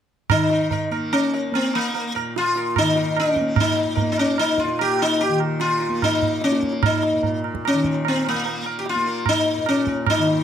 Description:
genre	indian classical, Hindustani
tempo	148 BPM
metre	4/4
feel	straight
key	unclear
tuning	A4 = 441 Hz
part	sitar	melody	0.3-10.4 s	Bb3 to Bb4	-20 LUFS	left 2 dB	none
part	tanpura	drone	0.3-10.4 s	Bb2 to Bb3	-27 LUFS	left 1 dB	none
part	tabla	percussion	0.3-10.4 s	none	-25 LUFS	right 7 dB	none
room	light reverb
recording	close, detailed microphones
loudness	-18 LUFS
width	side -9 dB against mid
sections	0.3-10.4 A section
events	none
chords	none

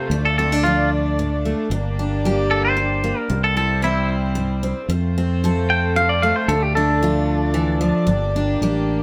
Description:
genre	honky-tonk and classic country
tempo	113 BPM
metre	3/4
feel	straight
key	unclear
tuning	A4 = 440 Hz
part	twangy electric guitar	second line	0.0-8.3 s	E4 to G5	-23 LUFS	equal	tape echo
part	picked steel-string acoustic guitar	accompaniment	0.0-9.0 s	F2 to A4	-25 LUFS	equal	none
part	warm studio violin section	sustained chords	0.0-9.0 s	G3 to D5	-29 LUFS	equal	none
part	fingered electric bass	bass	0.1-9.0 s	G1 to F2	-24 LUFS	equal	none
room	light reverb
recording	none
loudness	-19 LUFS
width	mono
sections	0.0-9.0 A section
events	clean electric guitar solo 0.0-9.0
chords	0.1 Dm; 1.7 Gm; 3.3 C; 4.9 F; 6.5 Dm; 8.1 Gm

